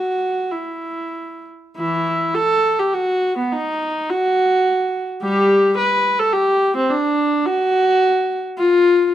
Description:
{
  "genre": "classical, baroque-style suite movement for unaccompanied viola",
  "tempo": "free time",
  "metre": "none",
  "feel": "none",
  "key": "unclear",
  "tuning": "A4 = 440 Hz",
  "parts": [
    { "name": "dark viola", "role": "solo", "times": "0.0-9.1 s", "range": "E3 to B4", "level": "-16 LUFS", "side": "equal", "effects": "none" }
  ],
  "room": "light reverb",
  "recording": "dark, warm production",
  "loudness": "-16 LUFS",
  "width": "side -11 dB against mid",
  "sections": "0.0-1.8 A section; 1.8-9.1 B section",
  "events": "none",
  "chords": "none"
}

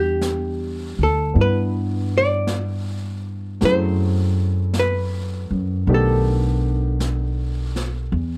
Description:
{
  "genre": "jazz ballad",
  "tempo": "53 BPM",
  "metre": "4/4",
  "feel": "swing 68% on 8ths",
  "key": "E minor",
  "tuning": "A4 = 441 Hz",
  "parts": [
    { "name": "archtop guitar, miked and amplified", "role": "melody", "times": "0.0-7.0 s", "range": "G4 to D5", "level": "-24 LUFS", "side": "equal", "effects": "none" },
    { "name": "warm baby grand piano", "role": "accompaniment", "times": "0.0-8.1 s", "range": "D#3 to F#5", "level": "-30 LUFS", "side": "equal", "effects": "none" },
    { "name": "upright bass", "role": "bass", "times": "0.0-8.4 s", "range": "B1 to G2", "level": "-23 LUFS", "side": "equal", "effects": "none" },
    { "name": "jazz brush drum kit", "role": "drums", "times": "0.2-8.4 s", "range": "brushed snare drum, hi-hat, snare drum", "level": "-35 LUFS", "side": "equal", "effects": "none" }
  ],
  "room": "light reverb",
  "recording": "dark, warm production",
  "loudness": "-21 LUFS",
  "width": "mono",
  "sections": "0.0-8.4 A section",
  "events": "none",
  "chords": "0.0 Em9; 3.6 F#m7b5; 5.9 B7alt"
}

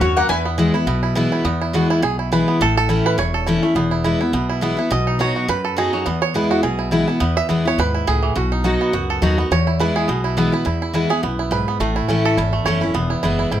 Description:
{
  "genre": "bluegrass",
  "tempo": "209 BPM",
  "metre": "4/4",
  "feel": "swing 56% on 8ths",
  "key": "E major",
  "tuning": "A4 = 441 Hz",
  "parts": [
    { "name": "bluegrass banjo", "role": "melody", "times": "0.0-13.6 s", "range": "E3 to E5", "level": "-22 LUFS", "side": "right 6 dB", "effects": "none" },
    { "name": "picked steel-string acoustic guitar", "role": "accompaniment", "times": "0.0-13.6 s", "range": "E2 to F#4", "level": "-19 LUFS", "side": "left 1 dB", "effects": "none" },
    { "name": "upright bass", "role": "bass", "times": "0.0-13.6 s", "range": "E1 to F#2", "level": "-23 LUFS", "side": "left 1 dB", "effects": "none" }
  ],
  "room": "moderate studio reverb, RT60 0.6 s",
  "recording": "none",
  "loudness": "-16 LUFS",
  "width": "side -11 dB against mid",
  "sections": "0.0-1.5 A section; 1.5-10.7 B section; 10.7-13.6 B section",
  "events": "five-string banjo solo 1.5-13.6",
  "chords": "0.3 E; 2.6 A; 3.8 E; 4.9 B; 6.1 E; 8.4 B; 9.5 E; 11.8 A; 13.0 E"
}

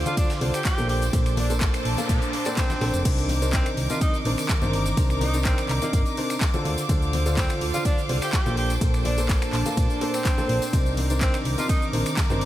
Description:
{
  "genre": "piano house",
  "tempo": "125 BPM",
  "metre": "4/4",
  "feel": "swing 53% on 16ths",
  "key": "C dorian",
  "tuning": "A4 = 439 Hz",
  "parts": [
    { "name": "clear studio violin section", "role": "sustained chords", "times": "0.0-12.5 s", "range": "Bb4 to D6", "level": "-33 LUFS", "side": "right 1 dB", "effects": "sidechain pumping" },
    { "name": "warm grand piano", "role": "riff", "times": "0.0-12.5 s", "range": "Bb2 to F5", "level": "-29 LUFS", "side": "equal", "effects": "sidechain pumping, tape echo" },
    { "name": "solid FM bass", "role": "bass", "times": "0.0-12.5 s", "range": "F1 to Bb2", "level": "-25 LUFS", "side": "equal", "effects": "tube saturation, sidechain pumping" },
    { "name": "airy breathy pad", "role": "texture", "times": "0.0-12.5 s", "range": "Eb3 to D6", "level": "-34 LUFS", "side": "right 1 dB", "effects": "chorus, sidechain pumping" },
    { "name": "clear tenor saxophone", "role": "melody", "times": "0.1-11.8 s", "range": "Bb3 to G4", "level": "-32 LUFS", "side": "right 1 dB", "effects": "tape echo" },
    { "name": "house drum kit", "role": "drums", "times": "0.1-12.5 s", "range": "crash cymbal, finger snaps, handclaps, hi-hat, ride cymbal, shaker", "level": "-32 LUFS", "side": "left 1 dB", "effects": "overdrive, studio reverb" },
    { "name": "congas and tambourine", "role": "percussion", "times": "0.1-12.4 s", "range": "none", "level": "-36 LUFS", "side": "left 3 dB", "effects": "none" },
    { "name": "breakbeat sampler-style drum kit", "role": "drums", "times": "0.2-12.5 s", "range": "hi-hat, snare drum", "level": "-42 LUFS", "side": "right 2 dB", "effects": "none" },
    { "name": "electronic kick drum", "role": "drums", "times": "0.2-12.3 s", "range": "none", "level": "-23 LUFS", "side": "equal", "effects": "overdrive, studio reverb" },
    { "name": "noise sweep", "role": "sound effects", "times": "1.7-3.1 s", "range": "none", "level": "-38 LUFS", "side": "equal", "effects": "none" }
  ],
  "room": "light reverb",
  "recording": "none",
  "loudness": "-21 LUFS",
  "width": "side -14 dB against mid",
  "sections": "0.0-12.5 A section",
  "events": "noise sweep 1.7-3.1",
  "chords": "0.0 Dm7; 0.9 Bbmaj9; 3.1 Cm9; 6.7 Bbmaj9; 10.7 Cm9"
}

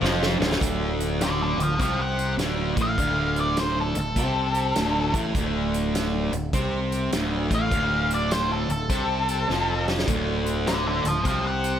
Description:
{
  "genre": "blues rock power trio and southern rock",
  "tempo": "102 BPM",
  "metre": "4/4",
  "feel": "swing 65% on 8ths",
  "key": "unclear",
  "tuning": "A4 = 442 Hz",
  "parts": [
    { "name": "fuzz guitar", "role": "riff", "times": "0.0-11.8 s", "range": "D2 to C4", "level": "-26 LUFS", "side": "equal", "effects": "distortion" },
    { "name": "growling fingered electric bass", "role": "bass", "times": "0.0-11.8 s", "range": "D1 to C2", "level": "-29 LUFS", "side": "equal", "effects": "overdrive" },
    { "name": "huge arena drum kit", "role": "drums", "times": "0.0-11.7 s", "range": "hi-hat, kick drum, snare drum", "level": "-29 LUFS", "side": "equal", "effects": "none" },
    { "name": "octave-fuzz lead guitar", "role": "melody", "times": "1.2-11.8 s", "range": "A4 to F#5", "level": "-26 LUFS", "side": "equal", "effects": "distortion" }
  ],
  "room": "light reverb",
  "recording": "none",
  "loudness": "-22 LUFS",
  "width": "side -9 dB against mid",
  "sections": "0.6-11.8 A section",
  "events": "drum fill 0.0-0.6, 9.5-10.1",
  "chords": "0.0 Dm; 0.6 D5"
}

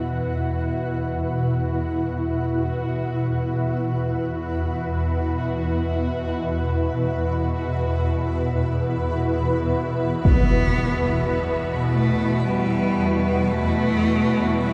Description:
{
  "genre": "dark ambient drone",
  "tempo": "free time",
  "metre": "none",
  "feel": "none",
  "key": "unclear",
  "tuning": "A4 = 440 Hz",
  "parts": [
    { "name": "granular cloud pad", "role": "sustained chords", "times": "0.0-14.7 s", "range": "E4 to F#5", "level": "-28 LUFS", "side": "equal", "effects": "built-in reverb, shimmer reverb" },
    { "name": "swarming drone", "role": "drone", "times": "0.0-14.7 s", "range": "E2 to B2", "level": "-26 LUFS", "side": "equal", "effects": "built-in reverb" },
    { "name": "bubbling stepped-filter texture", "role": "texture", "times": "0.0-14.7 s", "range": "F#4", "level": "-40 LUFS", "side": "equal", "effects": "chorus, built-in reverb, shimmer reverb" },
    { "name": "rich cello", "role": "melody", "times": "10.2-14.7 s", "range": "G3 to B3", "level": "-26 LUFS", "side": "equal", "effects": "shimmer reverb, diffuse ambient delay" },
    { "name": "impact", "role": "percussion", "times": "10.2-10.5 s", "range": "none", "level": "-25 LUFS", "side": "equal", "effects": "low-pass filter on sfx" }
  ],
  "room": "wet huge ambient reverb, RT60 7.8 s",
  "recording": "none",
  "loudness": "-23 LUFS",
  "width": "mono",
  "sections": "0.0-14.7 A section",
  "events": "fade-in on synth texture 0.0-14.7",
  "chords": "0.0 Esus2"
}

